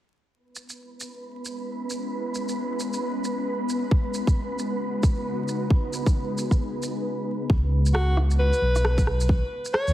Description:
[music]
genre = future garage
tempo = 134 BPM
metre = 4/4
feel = swing 61% on 16ths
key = C# minor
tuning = A4 = 440 Hz
[part]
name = ethereal airy pad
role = sustained chords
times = 1.5-7.5 s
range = C#3 to B4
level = -32 LUFS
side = equal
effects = ensemble chorus, built-in reverb, vintage 12-bit sampler grit, sidechain pumping
[part]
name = wind-like tuned noise texture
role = texture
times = 1.0-7.0 s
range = B3 to B4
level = -32 LUFS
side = left 1 dB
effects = built-in reverb
[part]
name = electronic shaker and rim click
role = drums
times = 0.6-9.9 s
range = none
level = -31 LUFS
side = right 1 dB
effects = studio reverb
[part]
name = electronic kick drum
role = drums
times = 3.9-9.4 s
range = none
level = -21 LUFS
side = equal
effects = studio reverb
[part]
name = dark detuned saw bass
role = bass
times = 7.5-9.9 s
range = B1 to D#2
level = -21 LUFS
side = equal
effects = tube saturation, sidechain pumping
[part]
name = bright alto saxophone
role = melody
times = 7.9-9.9 s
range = F#4 to C#5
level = -26 LUFS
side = equal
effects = tape echo
[sound]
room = moderate scoring stage reverb, RT60 1.7 s, digital ambience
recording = heavily compressed radio sound, multiband compression, vinyl crackle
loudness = -22 LUFS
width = side -14 dB against mid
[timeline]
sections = 0.3-7.5 A section; 7.5-9.9 B section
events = fade-in on ambient pad 0.3-7.5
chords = 0.3 C#m7; 3.9 G#m7/C#; 7.5 Bsus2

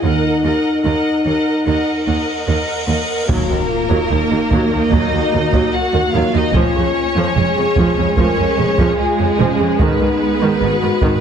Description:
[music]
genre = cinematic, epic orchestral film score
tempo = 74 BPM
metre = 4/4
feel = straight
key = Eb minor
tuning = A4 = 436 Hz
[part]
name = rich symphonic violin section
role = melody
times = 0.0-11.2 s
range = Ab4 to Gb5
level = -23 LUFS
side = left 3 dB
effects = none
[part]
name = rich symphonic violin section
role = second line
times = 0.0-11.2 s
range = Ab3 to Eb5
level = -24 LUFS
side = equal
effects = none
[part]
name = warm symphonic viola section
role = accompaniment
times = 0.0-11.2 s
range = Db3 to Bb4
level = -20 LUFS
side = right 3 dB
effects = none
[part]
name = dark French horn section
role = sustained chords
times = 0.0-11.2 s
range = Db4 to Bb4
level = -20 LUFS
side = left 3 dB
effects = none
[part]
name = clear symphonic cello section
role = bass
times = 0.0-11.1 s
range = Eb2 to Ab2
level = -21 LUFS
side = right 3 dB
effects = none
[part]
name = clear symphonic double bass section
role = bass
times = 0.0-11.1 s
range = F1 to Eb2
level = -22 LUFS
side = right 4 dB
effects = none
[part]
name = cymbal swell and impact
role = sound effects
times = 1.8-6.5 s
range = none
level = -28 LUFS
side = equal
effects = none
[part]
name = solo taiko drums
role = drums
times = 3.3-11.2 s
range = none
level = -20 LUFS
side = right 1 dB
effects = none
[sound]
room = moderate scoring stage reverb, RT60 2.0 s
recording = heavily compressed radio sound, nothing above 10.5 kHz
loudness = -14 LUFS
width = side -8 dB against mid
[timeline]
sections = 0.0-3.3 A section; 3.3-11.2 A section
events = cymbal swell 1.8-3.3; impact 3.3-6.5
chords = 0.0 Ebm; 6.5 Db/F; 9.8 Abm

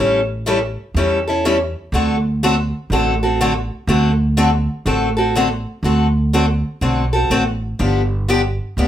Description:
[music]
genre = acoustic string swing (jazz manouche)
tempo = 123 BPM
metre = 4/4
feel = swing 63% on 8ths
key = D mixolydian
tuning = A4 = 439 Hz
[part]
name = picked steel-string acoustic guitar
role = accompaniment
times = 0.0-8.9 s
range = D3 to A4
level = -17 LUFS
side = left 1 dB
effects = none
[part]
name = upright bass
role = bass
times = 0.0-8.9 s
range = G1 to E2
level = -19 LUFS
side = right 1 dB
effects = none
[sound]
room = moderate studio reverb, RT60 0.7 s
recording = none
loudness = -15 LUFS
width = side -11 dB against mid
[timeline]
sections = 0.0-5.8 A section; 5.8-8.9 B section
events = none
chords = 0.0 A7; 1.9 D7; 7.8 G7

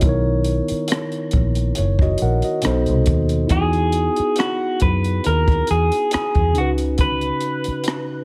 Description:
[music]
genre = R&B, neo-soul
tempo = 69 BPM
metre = 4/4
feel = swing 54% on 16ths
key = B major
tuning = A4 = 441 Hz
[part]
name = mellow tine electric piano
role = accompaniment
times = 0.0-8.2 s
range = B2 to F#5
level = -25 LUFS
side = equal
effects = none
[part]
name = vintage muted fingered electric bass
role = bass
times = 0.0-7.7 s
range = F#1 to F#2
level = -22 LUFS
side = equal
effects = none
[part]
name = compact cocktail drum kit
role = drums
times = 0.0-8.1 s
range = hi-hat, kick drum, rim click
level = -24 LUFS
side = equal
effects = none
[part]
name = electric guitar through a small old amp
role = melody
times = 3.5-8.2 s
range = F#4 to B4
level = -24 LUFS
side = equal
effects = none
[sound]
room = studio reverb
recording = none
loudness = -19 LUFS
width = mono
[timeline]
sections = 0.0-8.2 A section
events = none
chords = 0.0 Bmaj7; 2.6 B7b9; 3.5 Emaj9; 6.5 C#7sus4

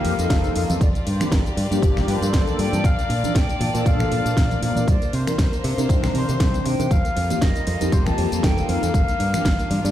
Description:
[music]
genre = nu-disco, nu disco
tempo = 118 BPM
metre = 4/4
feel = swing 55% on 16ths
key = Bb major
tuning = A4 = 440 Hz
[part]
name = silver concert flute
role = melody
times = 0.0-9.9 s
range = C5 to A5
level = -28 LUFS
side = left 2 dB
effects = vintage 12-bit sampler grit, ping-pong delay
[part]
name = mellow synth brass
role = accompaniment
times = 0.0-9.9 s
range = Eb3 to C5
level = -26 LUFS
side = left 1 dB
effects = chorus, sidechain pumping
[part]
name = clear studio violin section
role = sustained chords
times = 0.0-9.9 s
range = G3 to A5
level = -31 LUFS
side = left 1 dB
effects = sidechain pumping
[part]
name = modern bright fingered electric bass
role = bass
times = 0.0-9.9 s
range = F1 to C3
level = -24 LUFS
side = equal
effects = none
[part]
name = house drum kit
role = drums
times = 0.0-9.9 s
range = finger snaps, hi-hat, snare drum, tambourine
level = -30 LUFS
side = equal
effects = none
[part]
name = electronic kick drum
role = drums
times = 0.3-9.6 s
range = none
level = -20 LUFS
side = equal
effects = none
[part]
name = congas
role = percussion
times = 0.3-9.8 s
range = none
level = -30 LUFS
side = left 1 dB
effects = none
[part]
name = soft round pluck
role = arpeggios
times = 2.8-9.9 s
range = G3 to D5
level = -34 LUFS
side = right 3 dB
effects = none
[sound]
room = digital ambience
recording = played on a big sound system in a bare room, stone room reverb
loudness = -18 LUFS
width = side -12 dB against mid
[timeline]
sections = 0.0-9.9 A section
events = none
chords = 0.0 F9sus4; 0.8 Gm7; 2.8 Bbmaj7; 4.9 Cm9; 6.9 F9sus4; 8.9 Gm7

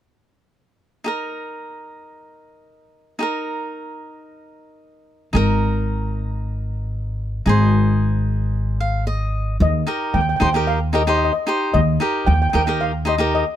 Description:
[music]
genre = calypso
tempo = 112 BPM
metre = 4/4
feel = straight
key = Eb major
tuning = A4 = 440 Hz
[part]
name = cavaquinho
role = accompaniment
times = 1.0-13.4 s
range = Eb4 to F5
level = -23 LUFS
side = right 1 dB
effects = none
[part]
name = upright bass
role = bass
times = 5.3-13.4 s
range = Ab1 to Eb2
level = -19 LUFS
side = equal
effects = none
[part]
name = steel pan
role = melody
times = 9.6-13.6 s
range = Eb5 to G5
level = -22 LUFS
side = left 1 dB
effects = none
[sound]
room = little or no reverb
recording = close, detailed microphones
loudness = -18 LUFS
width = side -11 dB against mid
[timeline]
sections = 1.1-9.6 A section; 9.6-13.6 B section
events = cavaquinho fill 8.5-9.6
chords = 1.1 Eb5; 5.3 Absus2; 9.6 Eb

